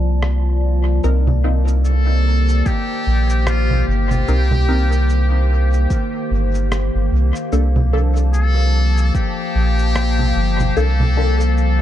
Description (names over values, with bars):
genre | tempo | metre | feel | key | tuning
ambient dub | 74 BPM | 4/4 | swing 58% on 16ths | C dorian | A4 = 437 Hz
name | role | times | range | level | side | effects
warbly tape-like pad | sustained chords | 0.0-11.8 s | Eb3 to A5 | -23 LUFS | left 2 dB | chorus, built-in reverb
soft dub sub bass | bass | 0.0-11.8 s | G1 to C2 | -15 LUFS | equal | none
bubbling stepped-filter texture | texture | 0.0-1.1 s | F3 to F4 | -30 LUFS | left 3 dB | chorus, built-in reverb
electronic rim click, cabasa and congas | drums | 0.2-11.8 s | none | -26 LUFS | right 2 dB | low-pass filter on snare, low-pass filter on perc, dub echo
filtered dub chord stab | stabs | 1.0-11.4 s | Bb3 to Bb4 | -26 LUFS | left 2 dB | phaser, analog chorus, dub echo
trumpet with metal mute | melody | 1.9-11.8 s | F4 to A4 | -25 LUFS | left 2 dB | dub echo
electronic kick drum | drums | 2.7-9.3 s | none | -19 LUFS | equal | none
room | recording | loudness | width
digital ambience | echo-heavy mix | -14 LUFS | side -12 dB against mid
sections
0.0-1.0 A section; 1.0-11.8 B section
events
none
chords
0.0 Bbmaj7/C; 1.0 Cm7; 7.5 Bbmaj7